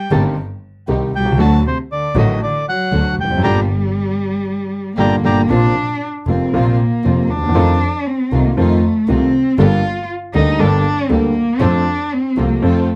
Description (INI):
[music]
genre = tango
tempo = 118 BPM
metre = 4/4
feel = rubato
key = G harmonic minor, Bb major from 5.5 s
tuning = A4 = 442 Hz
[part]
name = bandoneon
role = melody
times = 0.0-5.4 s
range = C5 to Bb5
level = -22 LUFS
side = equal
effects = none
[part]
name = warm cello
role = second line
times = 0.0-13.0 s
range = C3 to F4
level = -21 LUFS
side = equal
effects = none
[part]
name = warm concert grand piano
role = accompaniment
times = 0.1-12.8 s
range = F1 to A4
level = -19 LUFS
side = equal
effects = none
[part]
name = clear studio string section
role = stabs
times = 0.1-12.8 s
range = A3 to A4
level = -29 LUFS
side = equal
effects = slapback echo
[part]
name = rich double bass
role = bass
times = 0.1-12.8 s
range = F1 to F2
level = -21 LUFS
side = equal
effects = none
[sound]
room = little or no reverb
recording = dry, close 1970s-style studio recording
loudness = -16 LUFS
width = mono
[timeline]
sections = 0.0-5.5 A section; 5.5-13.0 B section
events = band accent 3.4-5.5; cello solo 5.5-13.0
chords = 0.0 Cm; 1.4 D; 3.4 Gm; 5.5 Bbsus2; 7.6 F7; 9.6 Gmadd9; 11.6 F